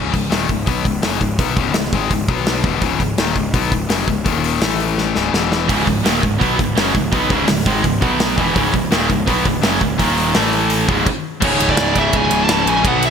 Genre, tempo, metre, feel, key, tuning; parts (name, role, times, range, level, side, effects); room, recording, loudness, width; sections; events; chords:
heavy metal; 168 BPM; 4/4; straight; C# minor; A4 = 441 Hz
distorted electric guitar; riff; 0.0-13.1 s; C#2 to B3; -19 LUFS; left 9 dB; overdrive
fuzz picked electric bass; bass; 0.0-13.1 s; C#1 to B1; -23 LUFS; right 1 dB; overdrive
big rock drum kit; drums; 0.1-13.1 s; crash cymbal, hi-hat, kick drum, ride cymbal, snare drum; -19 LUFS; equal
high-gain distorted guitar; riff; 5.7-13.1 s; C#2 to B3; -19 LUFS; right 11 dB; distortion
high-gain lead guitar; melody; 11.4-13.1 s; C#5 to A5; -18 LUFS; left 1 dB; distortion
moderate plate reverb, RT60 1.8 s, studio reverb; bright 1980s-style digital production; -14 LUFS; side -7 dB against mid
0.0-11.4 A section; 11.4-13.1 B section
drum fill 5.0-5.7; stop 11.1-11.4
0.0 C#5; 2.3 B5; 2.6 C#m; 4.3 D#5; 4.6 A5; 5.2 C#5; 5.3 E5; 5.7 C#5; 8.0 B5; 8.4 C#m; 10.0 D#5; 10.3 A5; 10.9 C#5; 11.1 N.C.; 11.4 C#5